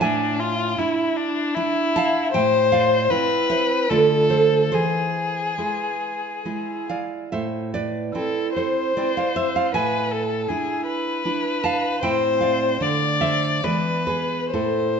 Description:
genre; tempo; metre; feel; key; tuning
romantic duo for violin and classical guitar; 65-80 BPM; 3/4; rubato; unclear; A4 = 442 Hz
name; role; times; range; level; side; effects
rich violin; melody; 0.0-15.0 s; D4 to D5; -22 LUFS; left 3 dB; none
nylon-string guitar; accompaniment; 0.0-15.0 s; A2 to A5; -22 LUFS; right 4 dB; none
room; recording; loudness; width
moderate scoring stage reverb, RT60 1.5 s; recorded in a church or concert hall, nothing above 7.9 kHz; -19 LUFS; side -6 dB against mid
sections
0.0-15.0 A section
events
none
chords
0.0 E7/A; 2.3 Am; 3.9 Dm; 4.7 E; 7.3 Am; 9.7 E7/A; 12.0 Am; 12.8 Dm; 13.6 E7

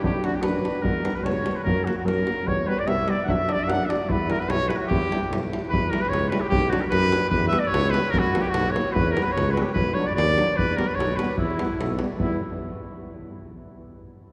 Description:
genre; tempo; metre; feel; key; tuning
balkan folk, Balkan brass band; 148 BPM; 2/4; swing 54% on 16ths; E dorian sharp4; A4 = 441 Hz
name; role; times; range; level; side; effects
warm trumpet; melody; 0.0-12.4 s; E4 to F#5; -29 LUFS; equal; none
clear flugelhorn; second line; 0.0-12.4 s; E4 to F#5; -35 LUFS; equal; none
clear euphonium; accompaniment; 0.0-12.4 s; F#3 to G3; -35 LUFS; equal; none
warm French horn; accompaniment; 0.0-12.4 s; A#3 to E4; -35 LUFS; equal; none
warm tuba; bass; 0.0-12.4 s; B1 to F#2; -30 LUFS; equal; none
davul; percussion; 0.0-12.4 s; none; -30 LUFS; equal; none
room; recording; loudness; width
wet cathedral reverb, RT60 5.0 s; recorded in a church or concert hall; -23 LUFS; mono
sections
0.0-5.7 A section; 5.7-12.2 A section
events
none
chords
0.0 Bm; 0.8 Em; 1.7 F#; 2.5 Em; 3.3 Bm; 4.1 Em; 6.5 Bm; 7.3 Em; 8.1 F#; 9.0 Em; 9.8 Bm; 10.6 Em

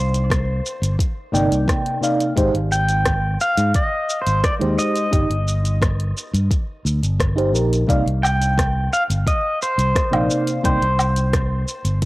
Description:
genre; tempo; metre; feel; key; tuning
sunset chillout; 87 BPM; 4/4; straight; C minor; A4 = 439 Hz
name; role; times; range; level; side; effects
pedal steel guitar; melody; 0.0-12.0 s; C5 to G5; -22 LUFS; equal; vintage 12-bit sampler grit, analog delay
fingered electric bass; bass; 0.0-12.0 s; G1 to Ab2; -20 LUFS; equal; none
deep house drum kit; drums; 0.1-12.1 s; hi-hat, rim click, shaker, woodblock; -25 LUFS; equal; cassette tape
electronic kick drum; drums; 0.3-12.1 s; none; -21 LUFS; equal; cassette tape
mellow FM electric piano; accompaniment; 1.3-10.8 s; C3 to G5; -21 LUFS; right 1 dB; chorus, auto-pan, cassette tape, analog delay
room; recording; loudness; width
light reverb, digital ambience; home recording on cassette; -17 LUFS; side -19 dB against mid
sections
0.0-12.1 A section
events
none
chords
0.0 Cm11; 2.4 Abmaj7; 5.1 Eb/G; 7.9 Cm11

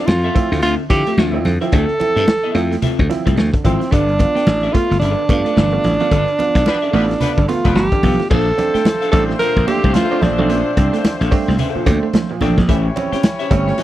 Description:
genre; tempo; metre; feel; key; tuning
funk; 110 BPM; 4/4; swing 60% on 16ths; unclear; A4 = 442 Hz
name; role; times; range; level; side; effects
breathy tenor saxophone; melody; 0.0-11.3 s; C4 to Bb4; -18 LUFS; right 1 dB; none
semi-hollow electric guitar; accompaniment; 0.0-13.8 s; C4 to G5; -26 LUFS; left 6 dB; none
clean electric guitar; riff; 0.0-13.8 s; F3 to D4; -24 LUFS; right 6 dB; none
slap bass; bass; 0.1-13.7 s; F1 to D3; -18 LUFS; left 1 dB; none
raw garage drum kit; drums; 0.1-13.8 s; crash cymbal, hi-hat, kick drum, snare drum; -17 LUFS; left 1 dB; none
congas; percussion; 0.1-13.8 s; none; -25 LUFS; right 4 dB; none
bright upright piano; stabs; 0.3-13.8 s; G2 to F4; -23 LUFS; right 4 dB; none
clear horn section; second line; 6.7-13.8 s; F3 to C#5; -25 LUFS; left 3 dB; none
room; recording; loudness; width
little or no reverb; dry, close 1970s-style studio recording; -13 LUFS; side -14 dB against mid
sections
0.0-8.3 A section; 8.3-13.8 B section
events
band accent 6.1-8.3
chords
0.0 Dm9; 3.9 G9; 8.3 Bbmaj9; 12.7 A7#9

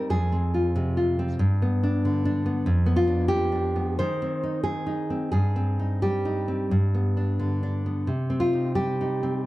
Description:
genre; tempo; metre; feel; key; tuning
romantic piece for solo classical guitar; 81-97 BPM; 4/4; rubato; C minor; A4 = 440 Hz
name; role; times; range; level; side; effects
nylon-string guitar; solo; 0.0-9.5 s; F2 to C5; -22 LUFS; equal; tape echo
room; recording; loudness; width
moderate small room reverb, RT60 0.5 s; dark, warm production; -22 LUFS; side -17 dB against mid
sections
0.0-9.5 A section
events
none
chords
0.1 Fm; 1.4 G; 2.7 G7/F; 4.0 Cm/Eb; 5.3 Cm/G; 6.7 G; 8.1 Cm

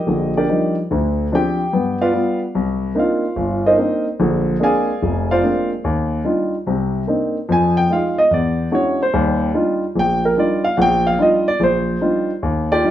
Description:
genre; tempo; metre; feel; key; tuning
jazz; 146 BPM; 4/4; swing 67% on 8ths; Eb major; A4 = 439 Hz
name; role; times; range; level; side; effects
warm concert grand piano; solo; 0.0-12.9 s; F1 to Ab5; -15 LUFS; equal; none
room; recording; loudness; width
wet studio reverb, RT60 0.8 s; heard from further back in the room; -15 LUFS; side -12 dB against mid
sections
0.0-12.4 A section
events
grand piano solo 0.0-12.4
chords
0.0 Ebmaj9; 0.9 Dmadd11; 1.7 G7; 2.5 Cm9; 4.2 Bb9; 5.8 Ebmaj9; 6.7 Cm9; 7.5 Fm7; 8.3 E13; 9.1 Ebmaj9

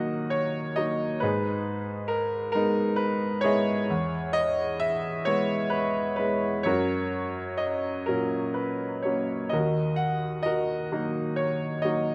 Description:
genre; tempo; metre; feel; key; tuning
classical, lyrical solo piano; 41-45 BPM (dotted quarters); 6/8; rubato; G# minor; A4 = 439 Hz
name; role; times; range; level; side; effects
bright grand piano; solo; 0.0-12.1 s; D#2 to F#5; -27 LUFS; equal; none
room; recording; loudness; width
moderate recital hall reverb, RT60 1.5 s; none; -27 LUFS; mono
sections
0.0-12.1 A section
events
none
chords
0.0 D#m; 1.2 G#m; 3.9 E; 6.7 F#; 9.5 D#m

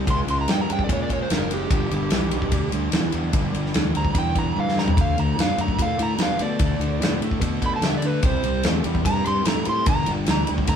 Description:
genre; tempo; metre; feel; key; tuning
blues rock power trio and southern rock; 147 BPM; 4/4; straight; unclear; A4 = 440 Hz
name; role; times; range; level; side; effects
overdriven electric guitar; riff; 0.0-10.8 s; G2 to B3; -27 LUFS; equal; none
fuzz fingered electric bass; bass; 0.0-10.8 s; F#1 to D3; -26 LUFS; equal; overdrive
overdriven slide guitar; melody; 0.1-10.8 s; G4 to C6; -26 LUFS; right 2 dB; none
big rock drum kit; drums; 0.1-10.8 s; kick drum, ride cymbal, snare drum, toms; -23 LUFS; left 1 dB; none
room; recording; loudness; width
moderate studio reverb, RT60 0.6 s; band playing live in one room; -20 LUFS; side -8 dB against mid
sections
0.0-10.8 A section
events
electric slide guitar solo 0.0-10.8; drum fill 4.6-5.0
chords
0.1 C#5; 1.7 G5; 5.0 D5; 8.2 C; 9.9 G5

